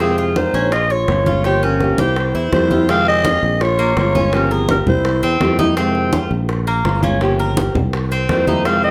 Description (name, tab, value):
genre	latin, Cuban son and guajira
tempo	166 BPM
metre	4/4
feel	straight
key	F minor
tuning	A4 = 436 Hz
part	growling clarinet	melody	0.0-5.6, 8.3-8.9 s	Ab4 to F5	-20 LUFS	equal	plate reverb
part	mellow hollow concert flute	second line	0.0-5.6, 8.3-8.9 s	C4 to Ab4	-26 LUFS	equal	none
part	nylon-string guitar	accompaniment	0.0-8.9 s	C3 to G4	-23 LUFS	equal	none
part	Cuban tres	arpeggios	0.0-8.9 s	Bb3 to Db5	-25 LUFS	equal	none
part	sustaining fretless electric bass	bass	0.0-8.9 s	G1 to F2	-22 LUFS	equal	none
part	bongos	percussion	0.0-8.9 s	none	-29 LUFS	equal	none
part	congas	percussion	0.0-8.9 s	none	-24 LUFS	equal	none
room	light reverb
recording	none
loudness	-16 LUFS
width	mono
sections	0.0-2.9 A section; 2.9-8.9 B section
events	none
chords	0.0 Fm7; 0.7 Bbm7; 1.4 Gm7b5; 2.2 C7; 2.9 Fm7; 3.6 Bbm7; 4.3 Gm7b5; 5.0 C7; 5.8 Fm7; 6.5 Bbm7; 7.2 Gm7b5; 7.9 C7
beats	| 0.00 0.36 0.72 1.08 | 1.44 1.80 2.17 2.53 | 2.89 3.25 3.61 3.97 | 4.33 4.69 5.05 5.41 | 5.77 6.13 6.49 6.85 | 7.21 7.57 7.93 8.29 | 8.65